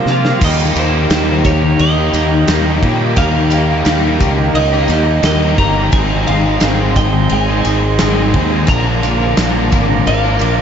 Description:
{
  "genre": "rock, shoegaze and dream pop",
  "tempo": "87 BPM",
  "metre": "4/4",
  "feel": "straight",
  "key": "unclear",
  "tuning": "A4 = 439 Hz",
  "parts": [
    { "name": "twelve-string electric guitar", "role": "melody", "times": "0.0-10.6 s", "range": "C5 to Bb5", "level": "-21 LUFS", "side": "equal", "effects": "lush chorus, ping-pong delay" },
    { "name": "warbly tape-like pad", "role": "sustained chords", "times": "0.0-10.6 s", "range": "G4 to D6", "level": "-24 LUFS", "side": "equal", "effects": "chorus, built-in reverb" },
    { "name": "fingerpicked twelve-string acoustic guitar", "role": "arpeggios", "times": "0.0-10.6 s", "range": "Eb3 to Ab4", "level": "-24 LUFS", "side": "right 2 dB", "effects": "none" },
    { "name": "crunchy overdriven guitar", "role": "riff", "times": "0.0-10.6 s", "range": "Ab2 to Bb4", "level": "-18 LUFS", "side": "left 8 dB", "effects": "ensemble chorus" },
    { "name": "raw garage guitar", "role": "riff", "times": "0.0-10.6 s", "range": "Ab2 to Bb4", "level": "-20 LUFS", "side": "right 8 dB", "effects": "overdrive, reverse reverb" },
    { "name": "fuzz fingered electric bass", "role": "bass", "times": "0.1-10.6 s", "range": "G1 to C3", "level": "-16 LUFS", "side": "equal", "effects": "overdrive" },
    { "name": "big rock drum kit", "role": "drums", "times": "0.1-10.6 s", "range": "crash cymbal, kick drum, ride cymbal, snare drum", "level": "-18 LUFS", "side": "equal", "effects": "none" },
    { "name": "tambourine", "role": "percussion", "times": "0.4-10.6 s", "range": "none", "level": "-32 LUFS", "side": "right 10 dB", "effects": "none" }
  ],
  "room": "moderate huge ambient reverb, RT60 4.3 s",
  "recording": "dreamy mix soaked in reverb, nothing above 7.8 kHz",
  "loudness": "-11 LUFS",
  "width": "side -8 dB against mid",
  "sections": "0.4-10.6 A section",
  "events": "drum fill 0.1-0.4",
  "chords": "0.4 Eb; 5.9 Ab; 8.7 Bb",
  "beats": "| 0.41 1.10 1.79 2.48 | 3.17 3.86 4.55 5.24 | 5.93 6.62 7.31 8.00 | 8.69 9.38 10.06"
}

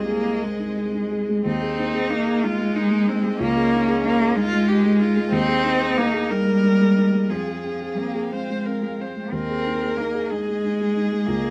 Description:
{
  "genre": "neoclassical piano and strings",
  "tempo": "61 BPM (dotted quarters)",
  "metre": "6/8",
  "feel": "rubato",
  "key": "unclear",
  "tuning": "A4 = 440 Hz",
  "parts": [
    { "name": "rich cello", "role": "second line", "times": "0.0-11.5 s", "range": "F3 to C4", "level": "-24 LUFS", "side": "equal", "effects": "none" },
    { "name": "felt-muted upright piano", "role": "accompaniment", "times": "0.0-11.5 s", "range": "C2 to Bb4", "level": "-28 LUFS", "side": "equal", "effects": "none" },
    { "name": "rich viola", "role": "accompaniment", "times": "0.0-11.5 s", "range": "C4 to C5", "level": "-30 LUFS", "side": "equal", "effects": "none" },
    { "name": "rich chamber string section", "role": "sustained chords", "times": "0.0-11.5 s", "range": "Ab3 to Ab5", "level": "-38 LUFS", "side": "equal", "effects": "none" }
  ],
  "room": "moderate small room reverb, RT60 0.5 s",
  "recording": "close, detailed microphones",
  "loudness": "-22 LUFS",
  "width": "mono",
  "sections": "0.0-1.4 A section; 1.4-11.5 B section",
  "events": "none",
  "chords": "0.0 Ab/C; 1.4 Ebsus4; 3.4 Dbsus2; 5.3 Ebsus4; 7.3 Fmadd9; 9.3 Ebsus4",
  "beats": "0.42 | 1.45 2.43 | 3.40 4.36 | 5.34 6.32 | 7.31 8.31 | 9.32 10.31 | 11.28"
}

